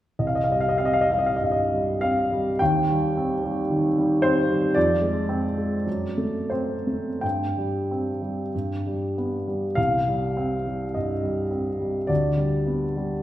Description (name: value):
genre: classical, romantic nocturne for solo piano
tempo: 41-57 BPM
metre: 4/4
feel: rubato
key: C minor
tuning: A4 = 439 Hz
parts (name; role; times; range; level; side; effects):
- warm upright piano; solo; 0.2-13.2 s; C2 to G5; -22 LUFS; equal; none
room: wet recital hall reverb, RT60 1.7 s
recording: recorded in a church or concert hall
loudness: -22 LUFS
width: side -13 dB against mid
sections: 0.2-13.2 A section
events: none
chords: 0.2 C5; 2.6 Cm/Eb; 4.8 Fm; 5.9 D7/F#; 7.2 C5/G; 8.5 G; 9.8 Cm; 12.1 G/D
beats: | 0.20 1.41 2.61 3.70 | 4.76 5.87 7.23 8.53 | 9.77 10.96 12.10